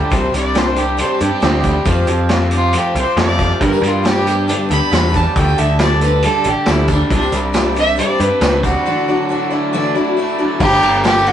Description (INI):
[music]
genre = folk rock and heartland rock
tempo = 137 BPM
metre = 4/4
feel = straight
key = G major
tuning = A4 = 440 Hz
[part]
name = rich fiddle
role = melody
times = 0.0-11.3 s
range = D4 to B5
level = -18 LUFS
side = right 1 dB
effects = none
[part]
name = picked twelve-string acoustic guitar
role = accompaniment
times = 0.0-11.3 s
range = G2 to D5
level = -20 LUFS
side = left 2 dB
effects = none
[part]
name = raw garage guitar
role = riff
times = 0.0-10.6 s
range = G2 to A4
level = -22 LUFS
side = right 1 dB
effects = overdrive
[part]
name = modern bright picked electric bass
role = bass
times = 0.1-11.3 s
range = G1 to G2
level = -18 LUFS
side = equal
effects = none
[part]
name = vintage drum kit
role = drums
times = 0.1-11.3 s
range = crash cymbal, hi-hat, kick drum, ride cymbal, snare drum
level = -18 LUFS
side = equal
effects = none
[part]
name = dark studio string section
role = sustained chords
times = 3.6-11.3 s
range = G3 to G4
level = -30 LUFS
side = right 1 dB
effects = none
[part]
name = tambourine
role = percussion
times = 3.7-11.3 s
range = none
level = -36 LUFS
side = right 3 dB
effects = none
[sound]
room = moderate studio reverb, RT60 0.6 s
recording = rough rehearsal-room recording, nothing above 10.5 kHz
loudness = -13 LUFS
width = side -10 dB against mid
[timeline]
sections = 0.0-10.6 A section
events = fiddle solo 0.0-10.6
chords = 0.1 Csus2; 1.9 Fadd9; 3.6 G; 5.4 Dsus4; 7.1 Csus2; 8.9 Dadd9; 10.6 Gadd9